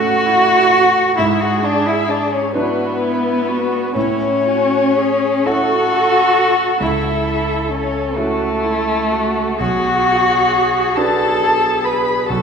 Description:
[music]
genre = classical, slow romantic movement for piano quintet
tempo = 43 BPM (dotted quarters)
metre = 6/8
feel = uneven beats, rubato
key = A major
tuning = A4 = 440 Hz
[part]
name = muted violin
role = melody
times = 0.0-12.4 s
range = A4 to B5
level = -19 LUFS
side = left 3 dB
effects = none
[part]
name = muted cello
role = second line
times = 0.0-12.4 s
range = A3 to B4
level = -21 LUFS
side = right 5 dB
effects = none
[part]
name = muted violin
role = second line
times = 0.0-12.4 s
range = A3 to B4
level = -18 LUFS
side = left 2 dB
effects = none
[part]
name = muted viola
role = accompaniment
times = 0.0-12.4 s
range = E4 to A4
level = -24 LUFS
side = right 2 dB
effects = none
[part]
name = warm concert grand piano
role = accompaniment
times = 0.0-12.4 s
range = B1 to B4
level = -22 LUFS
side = right 2 dB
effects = none
[sound]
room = wet recital hall reverb, RT60 1.6 s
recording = recorded in a church or concert hall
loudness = -13 LUFS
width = side -6 dB against mid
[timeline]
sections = 0.0-12.4 A section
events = none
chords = 0.0 A; 1.2 E7/G#; 4.0 A; 6.8 A/C#; 9.6 Bm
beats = | 1.18 2.55 | 3.96 5.46 | 6.81 8.16 | 9.60 10.96 | 12.29

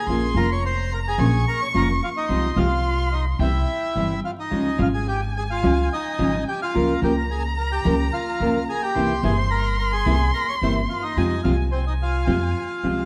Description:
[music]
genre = tango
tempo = 108 BPM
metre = 4/4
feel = rubato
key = F minor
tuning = A4 = 440 Hz
[part]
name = bandoneon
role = melody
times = 0.0-13.1 s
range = C4 to Db6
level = -29 LUFS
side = equal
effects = none
[part]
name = warm violin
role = second line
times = 0.0-13.1 s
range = G5 to Db6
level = -31 LUFS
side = equal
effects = none
[part]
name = nylon-string guitar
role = accompaniment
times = 0.1-13.0 s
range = C3 to Bb4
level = -26 LUFS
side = equal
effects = none
[part]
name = upright bass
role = bass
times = 0.1-13.1 s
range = F1 to F2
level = -26 LUFS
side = equal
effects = none
[sound]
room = wet large studio reverb, RT60 1.5 s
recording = dark, warm production, vinyl crackle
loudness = -22 LUFS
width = mono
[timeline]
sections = 0.0-13.1 A section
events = none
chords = 0.1 Bbm; 2.3 Fm/C; 3.4 C; 4.5 Db; 6.7 Bbm/Db; 8.9 C7; 11.2 Fm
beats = | 0.08 0.64 1.19 1.74 | 2.29 2.85 3.40 3.96 | 4.52 5.08 5.63 6.19 | 6.74 7.29 7.85 8.40 | 8.95 9.50 10.05 10.61 | 11.16 11.72 12.28 12.84

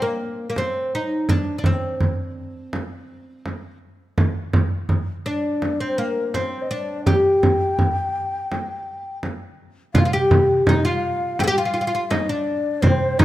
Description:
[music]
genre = Arabic maqam ensemble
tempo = 83 BPM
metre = 4/4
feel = straight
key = G maqam bayati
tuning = A4 = 440 Hz
[part]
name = oud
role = melody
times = 0.0-13.2 s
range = Bb3 to Ab4+50c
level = -22 LUFS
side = equal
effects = none
[part]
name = frame drum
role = percussion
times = 0.6-13.2 s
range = none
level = -21 LUFS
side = right 1 dB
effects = none
[part]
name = breathy mellow ney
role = second line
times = 5.3-13.2 s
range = Bb4 to G5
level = -26 LUFS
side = left 3 dB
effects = none
[part]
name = darbuka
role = percussion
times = 9.9-13.2 s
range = none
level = -25 LUFS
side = right 1 dB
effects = none
[sound]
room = moderate recital hall reverb, RT60 1.6 s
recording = none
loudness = -19 LUFS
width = side -14 dB against mid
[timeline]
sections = 0.0-9.9 A section; 9.9-13.2 B section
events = none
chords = none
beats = 0.56 | 1.28 2.00 2.72 3.45 | 4.17 4.89 5.61 6.33 | 7.05 7.78 8.50 9.22 | 9.94 10.66 11.39 12.11 | 12.83

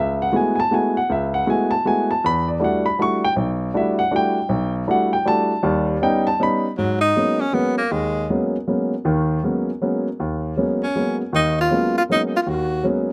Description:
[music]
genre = jazz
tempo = 158 BPM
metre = 3/4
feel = swing 64% on 8ths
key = G# dorian from 6.8 s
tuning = A4 = 440 Hz
[part]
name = warm grand piano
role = accompaniment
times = 0.0-13.1 s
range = B1 to C#6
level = -21 LUFS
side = equal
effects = slapback echo
[part]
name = breathy tenor saxophone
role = melody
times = 6.8-8.3, 10.8-12.9 s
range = F#3 to F#4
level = -22 LUFS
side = equal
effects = slapback echo
[sound]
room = little or no reverb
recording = recorded outdoors, with no room sound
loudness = -20 LUFS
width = mono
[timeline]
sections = 0.0-6.8 A section; 6.8-13.1 B section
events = none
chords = 0.0 F#m11; 2.2 Em11; 5.6 D#aug7; 6.8 G#m11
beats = 0.34 0.71 | 1.09 1.47 1.85 | 2.23 2.61 2.98 | 3.36 3.74 4.12 | 4.50 4.88 5.26 | 5.64 6.01 6.39 | 6.77 7.15 7.53 | 7.91 8.29 8.67 | 9.05 9.43 9.81 | 10.19 10.57 10.95 | 11.33 11.71 12.09 | 12.46 12.84

